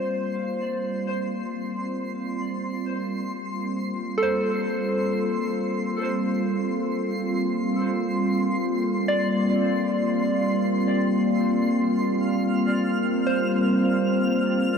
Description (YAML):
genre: ambient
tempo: free time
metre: none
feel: none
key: unclear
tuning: A4 = 440 Hz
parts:
  - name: warbly tape-like pad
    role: sustained chords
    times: 0.0-14.8 s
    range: G3 to F4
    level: -23 LUFS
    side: equal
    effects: chorus, built-in reverb
  - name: soft synth bell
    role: arpeggios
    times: 0.0-14.8 s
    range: A4 to D5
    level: -29 LUFS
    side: equal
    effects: chorus, phaser, diffuse ambient delay
  - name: twinkling granular texture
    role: texture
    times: 0.0-14.8 s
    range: C6 to F6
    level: -33 LUFS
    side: right 1 dB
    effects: built-in reverb
room: wet huge ambient reverb, RT60 7.2 s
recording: none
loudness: -22 LUFS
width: side -6 dB against mid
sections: 0.0-14.8 A section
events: fade-in on synth texture 0.0-14.8; filter sweep on ambient pad 0.0-14.8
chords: 0.0 Gm7; 2.2 Fsus24; 11.8 Gm7